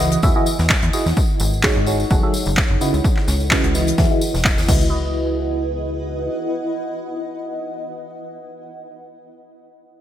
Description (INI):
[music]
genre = piano house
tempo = 128 BPM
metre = 4/4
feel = swing 54% on 16ths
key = C# minor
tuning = A4 = 442 Hz
[part]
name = barking FM electric piano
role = riff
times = 0.0-7.7 s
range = C#3 to F#5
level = -23 LUFS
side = right 1 dB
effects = phaser, sidechain pumping, low-pass filter, digital delay
[part]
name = plucky analog bass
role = bass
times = 0.0-6.3 s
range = E1 to E2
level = -21 LUFS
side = equal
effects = sidechain pumping
[part]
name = compact cocktail drum kit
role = drums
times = 0.0-4.7 s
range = hi-hat, snare drum, tambourine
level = -31 LUFS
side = left 3 dB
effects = high-pass filter on hats, high-pass filter on snare, high-pass filter on perc, high-pass filter on room
[part]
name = tambourine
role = percussion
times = 0.0-4.9 s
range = none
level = -31 LUFS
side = left 1 dB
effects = none
[part]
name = granular cloud pad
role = texture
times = 0.0-8.2 s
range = E4 to F#5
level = -26 LUFS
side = equal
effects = built-in reverb, lush chorus, sidechain pumping
[part]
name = electronic kick drum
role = drums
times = 0.2-4.8 s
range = none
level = -19 LUFS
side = equal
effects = none
[part]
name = house drum kit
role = drums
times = 0.7-4.8 s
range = crash cymbal, handclaps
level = -22 LUFS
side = equal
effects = none
[sound]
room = light reverb, small room ambience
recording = bright 1980s-style digital production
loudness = -16 LUFS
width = side -11 dB against mid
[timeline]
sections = 0.0-4.9 A section; 4.9-8.7 B section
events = filter sweep on FM electric piano 0.0-4.9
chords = 0.2 Emaj9; 1.2 G#7sus4; 2.1 F#m9; 2.8 C#m11; 4.0 Emaj9; 4.7 C#m11